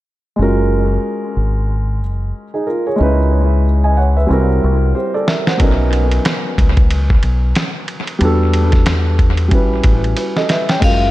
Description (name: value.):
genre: hip hop, jazz-hop.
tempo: 92 BPM.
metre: 4/4.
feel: swing 60% on 16ths.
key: unclear.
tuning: A4 = 438 Hz.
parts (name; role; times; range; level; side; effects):
dark grand piano; accompaniment; 0.4-11.1 s; F#3 to G#5; -18 LUFS; right 1 dB; analog delay.
deep dub fingered electric bass; bass; 0.4-11.1 s; F#1 to E2; -15 LUFS; equal; none.
lo-fi sampler-style drum kit; drums; 5.3-11.0 s; crash cymbal, hi-hat, kick drum, ride cymbal, snare drum; -15 LUFS; equal; vintage 12-bit sampler grit, analog delay.
vibraphone with hard mallets; melody; 10.8-11.1 s; E#5; -16 LUFS; left 4 dB; analog delay.
room: light reverb, digital ambience.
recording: echo-heavy mix.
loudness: -13 LUFS.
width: side -16 dB against mid.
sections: 0.4-10.8 A section.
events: drum fill 5.0-5.6, 10.2-10.8.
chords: 0.4 F#maj7; 3.0 C#m9; 4.3 C7#11; 5.6 Bmaj7; 8.2 Em11; 9.5 A13.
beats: | 0.39 1.04 1.69 2.35 | 3.00 3.65 4.30 4.95 | 5.61 6.26 6.91 7.56 | 8.21 8.87 9.52 10.17 | 10.82.